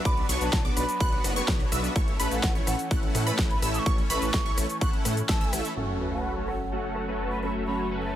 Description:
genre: EDM, festival progressive house.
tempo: 126 BPM.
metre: 4/4.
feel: straight.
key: unclear.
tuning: A4 = 440 Hz.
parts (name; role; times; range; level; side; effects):
lush unison pad; sustained chords; 0.0-8.2 s; E3 to D4; -36 LUFS; left 1 dB; chorus, sidechain pumping.
mellow hollow wooden flute; melody; 0.1-8.2 s; F#5 to D#6; -34 LUFS; right 1 dB; tape echo.
wide unison pluck; arpeggios; 0.1-5.7 s; B5 to F#6; -36 LUFS; right 1 dB; phaser, sidechain pumping, tape echo.
supersaw chords; riff; 0.1-8.2 s; A3 to F#5; -32 LUFS; equal; ensemble chorus, sidechain pumping, low-pass filter, tape echo.
wide detuned saw bass; bass; 0.1-8.2 s; F#1 to A2; -32 LUFS; equal; chorus, sidechain pumping.
big-room dance drum kit; drums; 0.1-7.5 s; crash cymbal, hi-hat, rim click, shaker, snare drum; -33 LUFS; left 1 dB; overdrive, low-pass filter on hats, low-pass filter on perc, low-pass filter on snare, low-pass filter on cymbals.
electronic kick drum; drums; 0.1-5.4 s; none; -26 LUFS; equal; overdrive.
felt-muted upright piano; accompaniment; 5.8-8.2 s; F#3 to A4; -36 LUFS; right 2 dB; sidechain pumping.
sub drop; sound effects; 5.8-7.7 s; none; -37 LUFS; equal; none.
room: digital ambience.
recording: none.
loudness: -24 LUFS.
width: side -11 dB against mid.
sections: 0.0-5.8 A section; 5.8-8.2 B section.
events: drop 0.0-5.8; band accent 5.3; impact 5.8-7.7; filter sweep on supersaw synth 5.8-8.2.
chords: 0.0 Bm; 2.0 A; 5.8 F#m.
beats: | 0.05 0.53 1.00 1.48 | 1.96 2.43 2.91 3.38 | 3.86 4.34 4.81 5.29 | 5.77 6.24 6.72 7.20 | 7.67 8.15.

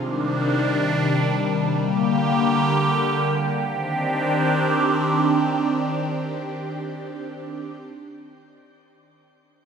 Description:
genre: pop.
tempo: free time.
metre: none.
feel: none.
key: C minor.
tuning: A4 = 440 Hz.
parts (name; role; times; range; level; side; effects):
phased analog pad; sustained chords; 0.0-7.7 s; C3 to G4; -20 LUFS; equal; phaser, chorus, shimmer reverb.
room: moderate plate reverb, RT60 1.1 s, digital ambience.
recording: none.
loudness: -19 LUFS.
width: side -6 dB against mid.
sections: 0.0-3.7 A section; 3.7-7.5 B section.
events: none.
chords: 0.0 Cmadd9; 1.8 Gm; 3.7 Cmadd9.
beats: free time.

